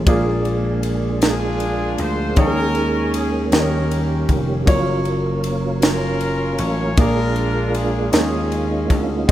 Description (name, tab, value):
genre	slow gospel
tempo	52 BPM (dotted quarters)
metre	6/8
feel	straight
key	unclear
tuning	A4 = 438 Hz
part	clear horn section	melody	0.0-9.2 s	Db4 to Db5	-26 LUFS	left 1 dB	slapback echo
part	warm baby grand piano	accompaniment	0.0-9.3 s	Bb2 to Eb5	-24 LUFS	left 1 dB	none
part	tonewheel organ	sustained chords	0.0-9.3 s	Eb3 to Bb4	-23 LUFS	right 3 dB	fast rotary speaker, overdrive, chorus vibrato
part	vintage slap bass	bass	0.0-9.3 s	F1 to Eb2	-22 LUFS	left 1 dB	none
part	crisp fusion drum kit	drums	0.1-9.3 s	kick drum, ride cymbal, snare drum	-20 LUFS	equal	none
room	light reverb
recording	rough home demo mix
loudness	-17 LUFS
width	side -13 dB against mid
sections	0.0-9.3 A section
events	none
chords	0.1 Bb7; 2.4 Eb7sus4; 3.5 Eb7; 4.7 Gbmaj7; 7.0 Bb7; 8.1 Eb9sus4